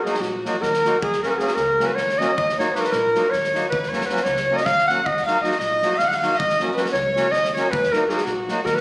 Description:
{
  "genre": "balkan folk, Balkan wedding band",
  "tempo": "313 BPM (eighths)",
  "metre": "7/8",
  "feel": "straight",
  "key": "Eb minor",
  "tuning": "A4 = 435 Hz",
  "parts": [
    { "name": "warm clarinet", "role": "melody", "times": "0.0-8.8 s", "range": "Gb4 to Gb5", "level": "-20 LUFS", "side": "equal", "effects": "none" },
    { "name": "warm violin", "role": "second line", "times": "0.0-8.8 s", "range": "Gb4 to Gb5", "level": "-28 LUFS", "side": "right 1 dB", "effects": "none" },
    { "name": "accordion", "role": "accompaniment", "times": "0.0-8.6 s", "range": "Gb3 to Gb4", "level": "-25 LUFS", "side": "equal", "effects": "none" },
    { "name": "loose indie drum kit", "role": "percussion", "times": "0.1-8.8 s", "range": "kick drum, snare drum", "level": "-30 LUFS", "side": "equal", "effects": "none" },
    { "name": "upright bass", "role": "bass", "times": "0.2-8.8 s", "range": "Bb1 to Eb2", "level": "-33 LUFS", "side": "equal", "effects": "none" }
  ],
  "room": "moderate studio reverb, RT60 0.7 s",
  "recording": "recorded on a phone in the room, studio reverb",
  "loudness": "-18 LUFS",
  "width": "side -23 dB against mid",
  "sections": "0.0-8.8 A section",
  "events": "none",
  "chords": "0.0 Ebm; 1.0 Gb; 2.4 Ebm; 3.7 Gb; 5.1 Ebm; 6.4 Gb; 7.7 Ebm"
}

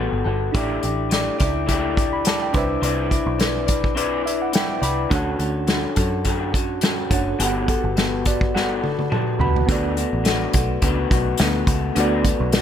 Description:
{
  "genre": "indie pop, bedroom pop",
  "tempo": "105 BPM",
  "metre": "4/4",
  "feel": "swing 55% on 16ths",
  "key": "D major",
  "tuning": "A4 = 440 Hz",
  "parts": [
    { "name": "electric guitar through a small old amp", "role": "accompaniment", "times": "0.0-12.6 s", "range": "D3 to D5", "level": "-23 LUFS", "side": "left 4 dB", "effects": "wide subtle chorus, warbly pitch drift" },
    { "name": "tine electric piano", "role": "accompaniment", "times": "0.0-12.6 s", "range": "B3 to B5", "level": "-27 LUFS", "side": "right 4 dB", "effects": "overdrive, fast stereo tremolo, cassette tape" },
    { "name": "picked electric bass", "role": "bass", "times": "0.0-12.6 s", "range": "F#1 to F#2", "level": "-25 LUFS", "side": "equal", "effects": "none" },
    { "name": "unplugged drum kit", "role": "drums", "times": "0.5-12.6 s", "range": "hi-hat, kick drum, snare drum, toms", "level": "-22 LUFS", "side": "equal", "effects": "none" }
  ],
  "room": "little or no reverb",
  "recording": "none",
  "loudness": "-18 LUFS",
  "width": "side -9 dB against mid",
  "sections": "0.0-9.7 A section; 9.7-12.6 B section",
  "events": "tine electric piano fill 4.0-5.1, 8.0-9.7; drum fill 8.5-9.7",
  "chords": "0.0 Gmaj9; 0.5 A7sus4; 2.5 Cmaj9; 5.1 Dmaj7; 7.4 Gmaj9; 9.7 D6"
}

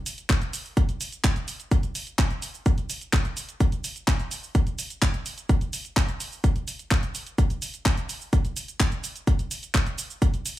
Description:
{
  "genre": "EDM",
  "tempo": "127 BPM",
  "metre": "4/4",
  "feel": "straight",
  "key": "none",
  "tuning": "none",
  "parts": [
    { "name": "house drum kit", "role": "drums", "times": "0.1-10.6 s", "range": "handclaps, hi-hat, shaker", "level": "-30 LUFS", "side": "equal", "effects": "none" },
    { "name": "electronic kick drum", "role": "drums", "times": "0.3-10.3 s", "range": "none", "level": "-22 LUFS", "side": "equal", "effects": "none" }
  ],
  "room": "little or no reverb",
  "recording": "small room ambience",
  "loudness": "-23 LUFS",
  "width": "side -14 dB against mid",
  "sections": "0.0-10.6 A section",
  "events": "none",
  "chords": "none"
}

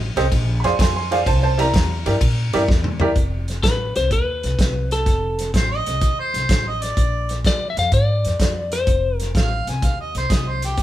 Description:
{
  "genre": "electric blues shuffle",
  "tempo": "126 BPM",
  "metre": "4/4",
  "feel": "swing 68% on 8ths",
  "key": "F mixolydian",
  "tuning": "A4 = 441 Hz",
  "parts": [
    { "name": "upright bass", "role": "bass", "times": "0.0-10.8 s", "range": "F1 to Bb2", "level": "-22 LUFS", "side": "equal", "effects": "none" },
    { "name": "clear upright piano", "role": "accompaniment", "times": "0.2-3.1 s", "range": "E4 to C6", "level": "-21 LUFS", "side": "right 2 dB", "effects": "none" },
    { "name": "warm soul drum kit", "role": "drums", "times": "0.2-10.8 s", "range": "hi-hat, kick drum, ride cymbal, snare drum, toms", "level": "-20 LUFS", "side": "equal", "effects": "none" },
    { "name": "lightly driven lead guitar", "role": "melody", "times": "3.6-9.3 s", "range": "A4 to F5", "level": "-22 LUFS", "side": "left 2 dB", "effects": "none" },
    { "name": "mellow harmonica", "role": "second line", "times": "5.6-10.8 s", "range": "G4 to Ab5", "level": "-24 LUFS", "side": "right 1 dB", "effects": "overdrive" }
  ],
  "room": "light reverb",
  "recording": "band playing live in one room",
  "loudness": "-17 LUFS",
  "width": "side -13 dB against mid",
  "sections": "0.0-3.2 A section; 3.2-10.8 B section",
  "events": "drum fill 2.7-3.2",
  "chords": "0.3 Bb7; 1.3 C7; 3.2 F7; 7.0 Bb7; 8.9 F7"
}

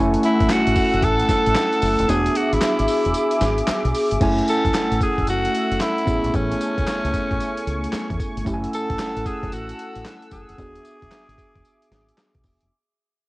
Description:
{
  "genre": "R&B, new jack swing",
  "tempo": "113 BPM",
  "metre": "4/4",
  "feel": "swing 65% on 16ths",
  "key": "F# minor",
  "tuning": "A4 = 441 Hz",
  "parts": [
    { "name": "tine electric piano", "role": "accompaniment", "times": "0.0-12.7 s", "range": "A3 to G#5", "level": "-24 LUFS", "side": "right 1 dB", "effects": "cassette tape" },
    { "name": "sweeping resonant pad", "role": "sustained chords", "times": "0.0-12.7 s", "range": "A3 to E6", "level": "-26 LUFS", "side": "left 1 dB", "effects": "chorus, cassette tape" },
    { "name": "deep dub fingered electric bass", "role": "bass", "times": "0.0-12.7 s", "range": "E1 to E2", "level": "-25 LUFS", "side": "equal", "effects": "none" },
    { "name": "dusty soul sampler-style drum kit", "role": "drums", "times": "0.1-12.7 s", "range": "crash cymbal, handclaps, hi-hat, kick drum, snare drum, tambourine", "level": "-26 LUFS", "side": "equal", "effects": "none" },
    { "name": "raspy tenor saxophone", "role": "melody", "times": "0.2-12.1 s", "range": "C#4 to A4", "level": "-23 LUFS", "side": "equal", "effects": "cassette tape" },
    { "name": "group handclap", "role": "percussion", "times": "0.5-12.3 s", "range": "none", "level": "-38 LUFS", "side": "left 1 dB", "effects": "none" }
  ],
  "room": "light reverb",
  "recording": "home recording on cassette",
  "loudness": "-18 LUFS",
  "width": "side -20 dB against mid",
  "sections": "0.0-4.2 A section; 4.2-12.7 B section",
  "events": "break 2.1-4.2; fade-out 4.2-12.7",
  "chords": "0.0 F#m7; 2.1 E7; 4.2 F#m7; 6.1 Amaj7; 8.5 F#m7; 10.6 E7"
}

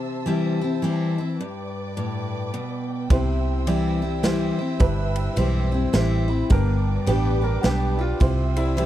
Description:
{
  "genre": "honky-tonk and classic country",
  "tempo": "106 BPM",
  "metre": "3/4",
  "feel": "swing 62% on 8ths",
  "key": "C major",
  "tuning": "A4 = 440 Hz",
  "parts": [
    { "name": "picked steel-string acoustic guitar", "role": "accompaniment", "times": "0.0-8.9 s", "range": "G2 to G4", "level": "-25 LUFS", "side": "left 2 dB", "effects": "none" },
    { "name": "warm symphonic violin section", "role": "sustained chords", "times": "0.0-8.9 s", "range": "B3 to E6", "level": "-35 LUFS", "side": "right 1 dB", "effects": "none" },
    { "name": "honky-tonk upright piano", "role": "accompaniment", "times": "3.1-8.9 s", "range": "B3 to B5", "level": "-30 LUFS", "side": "right 2 dB", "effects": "none" },
    { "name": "vintage muted fingered electric bass", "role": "bass", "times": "3.1-8.9 s", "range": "G1 to C2", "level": "-23 LUFS", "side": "right 1 dB", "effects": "none" },
    { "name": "natural country drum kit", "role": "drums", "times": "3.1-8.9 s", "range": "kick drum, ride cymbal, snare drum", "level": "-22 LUFS", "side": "right 1 dB", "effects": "none" },
    { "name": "bright upright piano", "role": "second line", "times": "6.5-8.9 s", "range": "G3 to Bb4", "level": "-29 LUFS", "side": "right 2 dB", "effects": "none" }
  ],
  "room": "little or no reverb",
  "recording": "dark, warm production",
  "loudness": "-20 LUFS",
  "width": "side -12 dB against mid",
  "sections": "0.0-8.9 A section",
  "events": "honky-tonk piano fill 4.8-6.5",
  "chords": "0.0 C; 1.4 G; 3.1 C; 6.5 G; 8.2 C"
}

